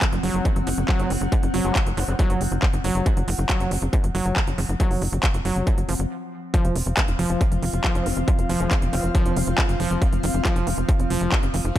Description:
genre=psychedelic trance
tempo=138 BPM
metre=4/4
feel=straight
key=unclear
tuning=A4 = 439 Hz
part: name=evolving wavetable pad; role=sustained chords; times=0.0-11.8 s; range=F3 to C4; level=-32 LUFS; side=equal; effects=phaser, built-in reverb, sidechain pumping
part: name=overdriven acid bass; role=riff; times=0.0-11.8 s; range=Eb3 to Gb4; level=-28 LUFS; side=equal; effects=auto-pan, sidechain pumping, digital delay
part: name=big-room dance drum kit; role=drums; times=0.0-11.8 s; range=handclaps, hi-hat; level=-28 LUFS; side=equal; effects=none
part: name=electronic kick drum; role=drums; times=0.0-11.8 s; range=none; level=-21 LUFS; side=equal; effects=distortion
part: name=airy breathy pad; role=texture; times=0.0-11.8 s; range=C4 to Gb5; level=-33 LUFS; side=equal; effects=chorus, sidechain pumping
part: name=tight sequencer bass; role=bass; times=0.1-11.7 s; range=F1 to Gb1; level=-24 LUFS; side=equal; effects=none
part: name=vowel-sweep wobble bass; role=second line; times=1.0-2.2, 8.0-9.3 s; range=Ab3 to C4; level=-38 LUFS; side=left 3 dB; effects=none
room=digital ambience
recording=none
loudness=-20 LUFS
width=side -13 dB against mid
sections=0.0-6.5 A section; 6.5-11.8 B section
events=break 6.1-6.5; drop 6.5-11.8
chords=0.0 Ab7/Gb (rootless); 6.5 F5

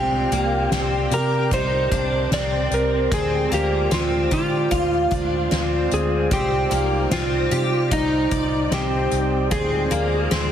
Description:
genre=dream pop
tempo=75 BPM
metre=4/4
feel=straight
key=C minor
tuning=A4 = 441 Hz
part: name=electric slide guitar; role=melody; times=0.0-10.5 s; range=Eb4 to D5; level=-22 LUFS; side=right 1 dB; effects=ping-pong delay, shimmer reverb
part: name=glass harmonica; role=sustained chords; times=0.0-10.5 s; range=G3 to D5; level=-28 LUFS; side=right 2 dB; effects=stereo widening, shimmer reverb
part: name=picked twelve-string acoustic guitar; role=arpeggios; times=0.0-10.5 s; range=Bb3 to D5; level=-25 LUFS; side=left 2 dB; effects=ensemble chorus, ping-pong delay, shimmer reverb
part: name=vintage muted fingered electric bass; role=bass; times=0.0-10.5 s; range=C2 to D3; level=-25 LUFS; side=equal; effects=none
part: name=soft-mallet drum kit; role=drums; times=0.3-10.5 s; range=hi-hat, kick drum, snare drum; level=-28 LUFS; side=left 1 dB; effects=none
room=moderate huge ambient reverb, RT60 4.5 s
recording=heavily compressed radio sound, multiband compression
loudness=-18 LUFS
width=side -9 dB against mid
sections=0.0-10.5 A section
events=none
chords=0.0 Cmadd9; 3.1 Dm7b5; 6.3 Cmadd9; 9.5 Dm7b5

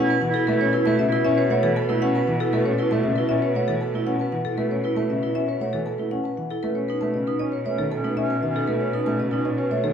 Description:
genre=classical, minimalist pattern music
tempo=117 BPM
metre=4/4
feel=straight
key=B mixolydian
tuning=A4 = 437 Hz
part: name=marimba with medium hard mallets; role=melody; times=0.0-9.9 s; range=A4 to A5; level=-26 LUFS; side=left 8 dB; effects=none
part: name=warm clarinet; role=second line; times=0.0-2.3, 6.6-9.9 s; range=C#4 to E4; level=-29 LUFS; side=right 4 dB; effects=none
part: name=dark concert grand piano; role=accompaniment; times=0.0-9.9 s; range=C#3 to C#4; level=-27 LUFS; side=equal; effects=none
part: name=rich cello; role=bass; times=0.0-9.9 s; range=B2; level=-28 LUFS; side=right 2 dB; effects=none
part: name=vibraphone with soft mallets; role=arpeggios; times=0.1-9.9 s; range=D#4 to C#5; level=-27 LUFS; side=right 6 dB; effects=none
room=wet large studio reverb, RT60 1.0 s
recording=heard from further back in the room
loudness=-20 LUFS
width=side -8 dB against mid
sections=0.0-9.9 A section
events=none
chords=0.0 B7sus4; 6.6 Aadd9/B

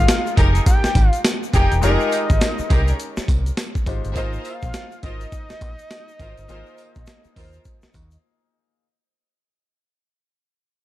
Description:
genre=R&B, new jack swing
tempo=103 BPM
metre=4/4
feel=swing 61% on 16ths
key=Ab major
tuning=A4 = 444 Hz
part: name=fat analog lead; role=melody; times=0.0-8.2 s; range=Eb5 to G5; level=-27 LUFS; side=left 2 dB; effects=tape echo
part: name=bright concert grand piano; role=accompaniment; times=0.0-8.8 s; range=Ab3 to C5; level=-30 LUFS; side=left 5 dB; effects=none
part: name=deep dub picked electric bass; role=bass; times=0.0-8.2 s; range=Fb1 to Eb2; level=-20 LUFS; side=equal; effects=none
part: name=breakbeat sampler-style drum kit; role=drums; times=0.1-8.2 s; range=hi-hat, kick drum, snare drum, tambourine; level=-19 LUFS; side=equal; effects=none
part: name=egg shaker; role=percussion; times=0.1-8.2 s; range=none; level=-40 LUFS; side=left 11 dB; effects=none
part: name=clear studio string section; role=stabs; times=0.4-7.5 s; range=Eb4 to C5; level=-27 LUFS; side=right 2 dB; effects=tape echo
room=little or no reverb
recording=none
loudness=-16 LUFS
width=side -15 dB against mid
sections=0.0-8.8 A section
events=fade-out 0.0-8.8; break 8.2-8.8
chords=0.0 Fm11; 4.2 Ab69

